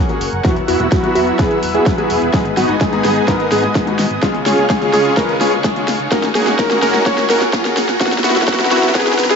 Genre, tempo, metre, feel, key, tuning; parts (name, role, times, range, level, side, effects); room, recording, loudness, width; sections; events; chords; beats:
EDM, festival progressive house; 127 BPM; 4/4; straight; A4 = 442 Hz
clear concert grand piano; accompaniment; 0.0-9.4 s; G#2 to C#5; -20 LUFS; left 4 dB; sidechain pumping, dub echo
lush unison pad; sustained chords; 0.0-9.4 s; G#4 to E6; -23 LUFS; right 1 dB; chorus, sidechain pumping
fat analog bass; bass; 0.0-9.4 s; E1 to C#2; -29 LUFS; equal; tube saturation, sidechain pumping
riser and swell; sound effects; 0.3-9.4 s; -25 LUFS; equal
big-room dance drum kit; drums; 0.1-9.4 s; hi-hat, snare drum; -20 LUFS; equal; overdrive
plucky unison lead; arpeggios; 0.4-9.4 s; F#4 to C#5; -19 LUFS; equal; cassette tape, sidechain pumping, dub echo
supersaw chords; riff; 0.4-9.4 s; G#3 to C#5; -20 LUFS; right 1 dB; sidechain pumping, low-pass filter, dub echo
electronic kick drum; drums; 0.4-9.0 s; -19 LUFS; equal
moderate huge ambient reverb, RT60 8.4 s; high-pass filter, nothing above 7.7 kHz; -12 LUFS; side -6 dB against mid
0.0-9.4 A section
build-up 0.0-9.4; drum fill 0.0-9.4; filter sweep on supersaw synth 0.0-9.4; filter sweep on digital synth lead 0.0-9.4; filter sweep 0.0-9.4; swell 9.0-9.4
0.4 Esus2; 2.3 G#m; 4.2 C#; 6.1 F#add9; 8.0 Esus2
| 0.45 0.92 1.39 1.86 | 2.34 2.81 3.28 3.75 | 4.23 4.70 5.17 5.64 | 6.12 6.59 7.06 7.53 | 8.01 8.48 8.95